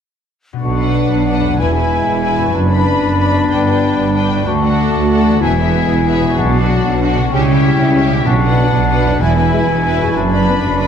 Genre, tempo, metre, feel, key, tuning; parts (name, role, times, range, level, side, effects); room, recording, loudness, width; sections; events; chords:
cinematic, heroic adventure film score; 126 BPM (dotted quarters); 12/8; straight; B minor; A4 = 440 Hz
concert harp; arpeggios; 0.5-10.9 s; E2 to B4; -21 LUFS; left 8 dB
clear clarinet; second line; 0.6-10.9 s; D4 to F#4; -22 LUFS; left 2 dB
mellow hollow concert flute; second line; 0.6-10.9 s; F#5 to B5; -22 LUFS; left 2 dB
dark French horn section; sustained chords; 0.6-10.5 s; F#3 to F#4; -20 LUFS; left 4 dB
bright symphonic double bass section; bass; 0.6-10.9 s; E1 to D2; -20 LUFS; right 3 dB
rich symphonic cello section; bass; 0.6-10.9 s; D2 to C#3; -18 LUFS; right 4 dB
warm studio violin section; melody; 0.8-10.9 s; E5 to B5; -25 LUFS; left 4 dB
warm symphonic violin section; second line; 0.8-10.9 s; F#4 to B4; -23 LUFS; left 1 dB
warm symphonic viola section; accompaniment; 0.8-10.9 s; B3 to E4; -23 LUFS; right 1 dB
timpani; percussion; 6.4-8.7 s; B2; -22 LUFS; left 1 dB
wet scoring stage reverb, RT60 1.9 s; -12 LUFS; side -8 dB against mid
0.6-10.9 A section
build-up 0.6-10.9
0.6 Bm; 1.6 E; 2.6 Bm/F#; 3.5 G; 4.5 D; 5.4 E; 6.4 Bm; 7.3 C#dim; 8.3 Bm; 9.2 E; 10.2 Bm/F#